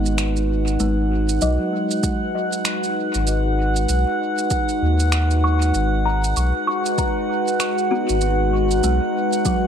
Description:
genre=ambient dub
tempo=97 BPM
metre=4/4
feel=swing 60% on 16ths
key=G# minor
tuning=A4 = 439 Hz
part: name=warbly tape-like pad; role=sustained chords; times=0.0-9.7 s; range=G#3 to B4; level=-23 LUFS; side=left 1 dB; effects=chorus, built-in reverb
part: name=kalimba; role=arpeggios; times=0.0-9.7 s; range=F#3 to C#6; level=-27 LUFS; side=left 3 dB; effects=low-pass filter, analog delay
part: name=soft dub sub bass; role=bass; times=0.0-9.0 s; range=G#1 to D#2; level=-20 LUFS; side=equal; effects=tube saturation
part: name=drifting glass-harmonics texture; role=texture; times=0.0-9.7 s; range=F#5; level=-25 LUFS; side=right 2 dB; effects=chorus, built-in reverb
part: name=electronic shaker and finger snaps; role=drums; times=0.1-9.6 s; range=none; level=-27 LUFS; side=right 4 dB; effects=dub echo
part: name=electronic kick drum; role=drums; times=2.0-9.6 s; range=none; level=-24 LUFS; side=equal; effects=overdrive
room=light reverb, digital ambience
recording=echo-heavy mix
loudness=-18 LUFS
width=side -8 dB against mid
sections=0.0-9.7 A section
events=filter sweep on kalimba 0.0-9.7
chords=0.0 G#m7

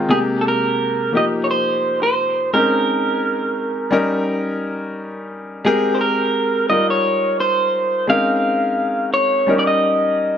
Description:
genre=soul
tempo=86 BPM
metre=4/4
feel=swing 54% on 16ths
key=Bb dorian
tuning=A4 = 438 Hz
part: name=clear grand piano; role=accompaniment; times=0.0-10.4 s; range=C3 to Bb4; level=-20 LUFS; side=left 2 dB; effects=none
part: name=electric guitar through a small old amp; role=melody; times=0.1-10.4 s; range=Ab4 to F5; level=-18 LUFS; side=right 1 dB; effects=tape echo
room=light reverb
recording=none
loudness=-16 LUFS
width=side -8 dB against mid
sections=0.1-10.4 A section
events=none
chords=0.1 Abmaj9; 1.1 F9sus4; 2.5 Bbm11; 3.9 Eb7; 5.7 Abmaj9; 6.7 F9sus4; 8.1 Bbm11; 9.5 Eb7

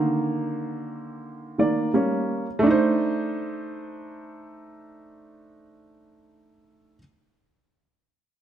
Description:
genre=hip hop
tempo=84 BPM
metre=4/4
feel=swing 64% on 16ths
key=C dorian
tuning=A4 = 440 Hz
part: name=warm upright piano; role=accompaniment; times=0.0-7.0 s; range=D3 to Eb5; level=-23 LUFS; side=right 2 dB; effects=none
room=wet echo chamber reverb, RT60 1.8 s, small room ambience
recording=dark, warm production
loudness=-22 LUFS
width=side -10 dB against mid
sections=0.0-2.7 A section; 2.7-5.5 B section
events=upright piano solo 0.0-2.7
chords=0.0 Ebmaj7/D; 1.9 Gdim; 2.7 Cm69

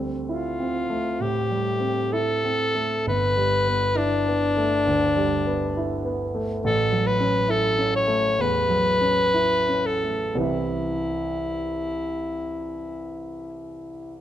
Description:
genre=classical, impressionist duo for alto saxophone and grand piano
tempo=53-71 BPM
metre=4/4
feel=rubato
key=unclear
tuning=A4 = 440 Hz
part: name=warm concert grand piano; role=accompaniment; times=0.0-14.2 s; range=G1 to E4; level=-26 LUFS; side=right 2 dB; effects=none
part: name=clear alto saxophone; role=melody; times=0.3-14.2 s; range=D4 to C#5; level=-23 LUFS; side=left 1 dB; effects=none
room=light reverb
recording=close, detailed microphones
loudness=-21 LUFS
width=side -11 dB against mid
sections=0.0-14.2 A section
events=none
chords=0.0 Dm11; 3.1 G69; 6.6 A69; 10.4 Cmaj7

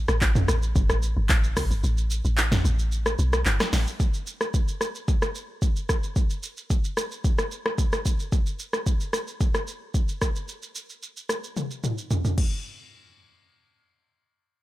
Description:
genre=amapiano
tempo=111 BPM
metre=4/4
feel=straight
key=unclear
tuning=A4 = 440 Hz
part: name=deep log drum bass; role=bass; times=0.0-3.9 s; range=G1 to B1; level=-23 LUFS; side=equal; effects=none
part: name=deep house drum kit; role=drums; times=0.1-12.5 s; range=crash cymbal, handclaps, hi-hat, kick drum, rim click, shaker, snare drum, toms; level=-24 LUFS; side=equal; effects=none
room=little or no reverb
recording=none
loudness=-23 LUFS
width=side -16 dB against mid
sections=0.0-4.0 A section; 4.0-12.6 B section; 12.6-14.6 C section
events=drop 0.0-4.0; kick muted 1.8-4.0; drum fill 11.6-12.6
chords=none

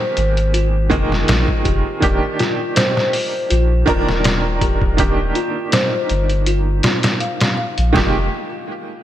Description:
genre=trip hop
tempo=81 BPM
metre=4/4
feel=swing 54% on 16ths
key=unclear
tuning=A4 = 440 Hz
part: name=bright upright piano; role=accompaniment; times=0.0-8.2 s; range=Eb3 to Bb4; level=-21 LUFS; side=right 2 dB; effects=tremolo, tape echo
part: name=music box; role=arpeggios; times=0.0-8.3 s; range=F4 to F5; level=-23 LUFS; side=left 1 dB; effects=digital delay
part: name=warm sub bass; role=bass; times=0.2-8.3 s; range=Eb1 to Bb1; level=-18 LUFS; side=equal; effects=none
part: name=trip hop sampler-style drum kit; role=drums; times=0.2-8.1 s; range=hi-hat, kick drum, snare drum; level=-19 LUFS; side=equal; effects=studio ambience
room=moderate lush hall reverb, RT60 2.7 s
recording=bright 1980s-style digital production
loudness=-15 LUFS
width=side -12 dB against mid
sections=0.0-7.9 A section; 7.9-9.0 B section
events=none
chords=0.0 Fm11; 2.0 Ebmaj7; 7.9 Fm11

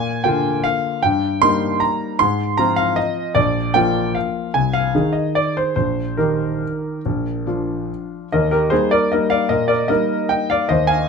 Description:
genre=classical, piano waltz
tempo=136-161 BPM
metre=3/4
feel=rubato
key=Eb major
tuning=A4 = 438 Hz
part: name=clear concert grand piano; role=solo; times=0.0-11.1 s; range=Bb1 to C6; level=-16 LUFS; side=equal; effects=none
room=little or no reverb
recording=close, detailed microphones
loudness=-16 LUFS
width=side -5 dB against mid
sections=0.0-8.3 A section; 8.3-11.1 B section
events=none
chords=0.0 Bb; 1.0 Eb/G; 2.2 Fm/Ab; 3.4 Bb; 4.5 Ab/C; 5.8 Eb/Bb; 7.0 Bb; 8.3 Eb

